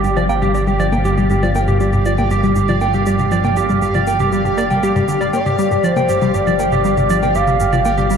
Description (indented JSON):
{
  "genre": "ambient, sequencer-driven space music",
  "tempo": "119 BPM",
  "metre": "4/4",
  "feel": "straight",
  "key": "G minor",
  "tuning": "A4 = 439 Hz",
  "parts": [
    { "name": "mellow electric guitar", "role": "arpeggios", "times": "0.0-8.2 s", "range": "G4 to G5", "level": "-18 LUFS", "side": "right 2 dB", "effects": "auto-pan, shimmer reverb, analog delay" },
    { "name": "tight sequenced synth", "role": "riff", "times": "0.0-8.2 s", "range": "G2 to Bb3", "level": "-19 LUFS", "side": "equal", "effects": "chorus, analog delay" },
    { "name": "fat analog bass", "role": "bass", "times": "0.0-8.2 s", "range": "G1", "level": "-21 LUFS", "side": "equal", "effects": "none" },
    { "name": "electronic shaker and toms", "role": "percussion", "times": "0.0-8.2 s", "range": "none", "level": "-25 LUFS", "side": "left 1 dB", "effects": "overdrive, analog delay" },
    { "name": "bubbling stepped-filter texture", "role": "texture", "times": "0.0-8.2 s", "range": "F5", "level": "-32 LUFS", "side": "right 2 dB", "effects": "chorus, built-in reverb, shimmer reverb" },
    { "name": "expressive synth lead", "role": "melody", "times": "5.3-8.1 s", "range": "C5 to F5", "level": "-18 LUFS", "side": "left 2 dB", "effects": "lush chorus, shimmer reverb, analog delay" }
  ],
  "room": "wet cathedral reverb, RT60 5.9 s",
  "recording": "in a vast, echoing space, cassette tape",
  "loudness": "-13 LUFS",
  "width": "side -7 dB against mid",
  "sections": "0.0-8.2 A section",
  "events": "fade-in on synth texture 0.0-8.2; fade-in on drum 0.0-8.2",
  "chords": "0.0 G7(no3)",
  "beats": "0.29 0.80 | 1.30 1.80 2.31 2.81 | 3.32 3.82 4.33 4.83 | 5.33 5.84 6.34 6.85 | 7.35 7.86"
}